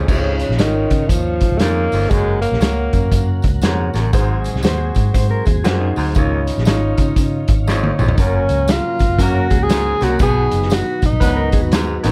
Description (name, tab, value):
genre	uptempo 1960s-style soul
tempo	119 BPM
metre	4/4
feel	swing 63% on 8ths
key	F# major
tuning	A4 = 439 Hz
part	clear grand piano	accompaniment	0.0-12.1 s	G#2 to C#5	-27 LUFS	equal	none
part	tonewheel organ	sustained chords	0.0-12.1 s	C#3 to G#4	-31 LUFS	equal	none
part	breathy baritone saxophone	riff	0.0-12.1 s	D#2 to B2	-28 LUFS	equal	none
part	mellow electric guitar	riff	0.0-0.1, 5.1-6.1, 9.2-12.1 s	D#4 to B#4	-28 LUFS	equal	none
part	vintage muted fingered electric bass	bass	0.0-12.1 s	F#1 to C#3	-21 LUFS	equal	none
part	breathy tenor saxophone	melody	0.1-3.4, 8.1-11.7 s	C#3 to G#4	-22 LUFS	equal	plate reverb
part	vintage drum kit	drums	0.1-12.1 s	crash cymbal, hi-hat, kick drum, snare drum, toms	-20 LUFS	equal	none
part	tambourine	percussion	0.1-12.1 s	none	-41 LUFS	equal	none
part	mellow horn section	second line	9.2-11.4 s	F#3 to B4	-26 LUFS	equal	tube saturation
room	light reverb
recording	dark, warm production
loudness	-16 LUFS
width	mono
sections	0.1-8.2 A section; 8.2-12.1 B section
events	drum fill 7.7-8.2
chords	0.1 C#add9; 2.1 F#; 4.1 G#7; 6.2 C#add9; 8.2 F#; 10.2 B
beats	| 0.08 0.59 1.10 1.60 | 2.11 2.61 3.12 3.63 | 4.13 4.64 5.14 5.65 | 6.16 6.66 7.17 7.67 | 8.18 8.68 9.19 9.70 | 10.20 10.71 11.21 11.72